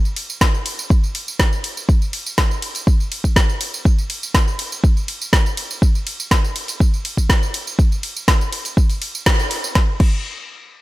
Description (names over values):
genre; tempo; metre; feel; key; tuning
house; 122 BPM; 4/4; straight; none; none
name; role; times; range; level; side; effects
deep house drum kit; drums; 0.1-10.1 s; crash cymbal, hi-hat, ride cymbal, snare drum, tambourine; -22 LUFS; equal; none
electronic kick drum; drums; 0.4-10.2 s; none; -15 LUFS; equal; none
room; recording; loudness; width
digital ambience; none; -16 LUFS; side -18 dB against mid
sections
0.0-9.8 A section; 9.8-10.8 B section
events
drop 0.0-9.8; band accent 9.3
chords
none